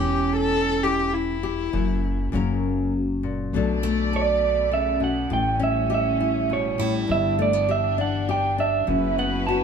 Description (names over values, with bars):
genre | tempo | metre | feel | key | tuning
acoustic folk-pop ballad | 101 BPM | 3/4 | straight | B minor | A4 = 441 Hz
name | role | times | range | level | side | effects
warm cello | second line | 0.0-2.3 s | E4 to A4 | -25 LUFS | left 5 dB | none
nylon-string guitar | accompaniment | 0.0-9.6 s | F#2 to A#4 | -26 LUFS | left 5 dB | none
picked steel-string acoustic guitar | arpeggios | 0.0-7.3 s | A3 to E4 | -29 LUFS | right 5 dB | none
upright bass | bass | 0.0-9.6 s | E1 to B1 | -28 LUFS | equal | none
warm chamber string section | sustained chords | 3.6-9.6 s | E3 to D5 | -31 LUFS | equal | none
electric guitar through a small old amp | melody | 4.2-9.6 s | C#5 to A5 | -23 LUFS | right 7 dB | harmonic tremolo
room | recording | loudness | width
moderate large studio reverb, RT60 1.0 s | band playing live in one room | -20 LUFS | side -6 dB against mid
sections
0.0-3.5 A section; 3.5-9.6 B section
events
none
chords
0.0 C#dim/E; 1.7 Esus2/F#; 2.3 F#; 3.5 Bm7; 5.3 A7; 7.1 Em7/G; 8.9 F#7sus4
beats
0.54 1.13 | 1.73 2.33 2.93 | 3.52 4.12 4.72 | 5.31 5.91 6.50 | 7.09 7.69 8.28 | 8.87 9.47